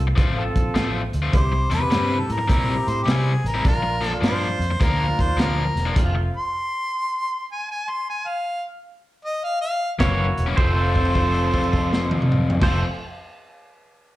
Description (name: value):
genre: electric blues shuffle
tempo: 104 BPM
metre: 4/4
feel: swing 66% on 8ths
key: F major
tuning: A4 = 440 Hz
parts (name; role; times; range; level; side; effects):
- mellow horn section; stabs; 0.0-6.3, 10.0-12.8 s; A3 to A4; -30 LUFS; right 1 dB; slapback echo
- vintage muted fingered electric bass; bass; 0.0-6.3, 10.0-12.8 s; E1 to C3; -24 LUFS; equal; none
- cranked stack guitar; riff; 0.1-6.2, 10.0-12.8 s; F2 to F4; -25 LUFS; left 3 dB; overdrive, slapback echo
- crunchy breakbeat drum kit; drums; 0.2-6.1, 10.0-12.7 s; crash cymbal, hi-hat, kick drum, snare drum, toms; -22 LUFS; equal; none
- clear harmonica; melody; 1.3-12.8 s; G4 to C6; -25 LUFS; equal; overdrive, slapback echo
- clean electric guitar; second line; 10.0-12.8 s; C5 to Db5; -30 LUFS; right 5 dB; slapback echo
room: light reverb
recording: live gig heard through the venue's PA, club reverb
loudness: -19 LUFS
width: side -16 dB against mid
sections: 0.0-10.6 A section; 10.6-12.9 B section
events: stop 6.0-10.0; held note 10.6-12.5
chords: 0.0 F; 1.3 C; 3.6 Bb; 6.0 F; 10.0 Gb7; 10.6 F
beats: 0.17 0.75 | 1.33 1.91 2.48 3.06 | 3.64 4.22 4.80 5.38 | 5.95 6.53 7.11 7.69 | 8.27 8.84 9.42 10.00 | 10.58 11.15 11.73 12.31